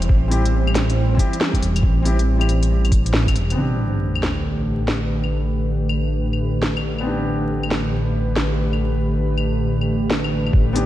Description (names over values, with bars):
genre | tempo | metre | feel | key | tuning
future garage | 138 BPM | 4/4 | swing 64% on 16ths | A minor | A4 = 445 Hz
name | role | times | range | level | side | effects
airy breathy pad | sustained chords | 0.0-10.9 s | D3 to C5 | -23 LUFS | equal | chorus, vintage 12-bit sampler grit, sidechain pumping
dark detuned saw bass | bass | 0.0-10.9 s | E1 to A1 | -21 LUFS | equal | sidechain pumping
organic electronic drum kit | drums | 0.0-10.9 s | claves, hi-hat, snare drum | -26 LUFS | left 1 dB | studio reverb
electronic kick drum | drums | 0.1-3.3, 10.5-10.6 s | none | -17 LUFS | equal | studio reverb
felt-muted upright piano | accompaniment | 0.3-10.9 s | B3 to G4 | -28 LUFS | left 2 dB | sidechain pumping, ping-pong delay
sub drop | sound effects | 3.6-5.3 s | none | -25 LUFS | equal | none
room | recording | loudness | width
moderate lush hall reverb, RT60 1.9 s | dreamy mix soaked in reverb, vinyl crackle | -17 LUFS | side -14 dB against mid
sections
0.0-3.6 A section; 3.6-10.5 B section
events
impact 3.6-5.3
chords
0.0 C; 3.6 Am11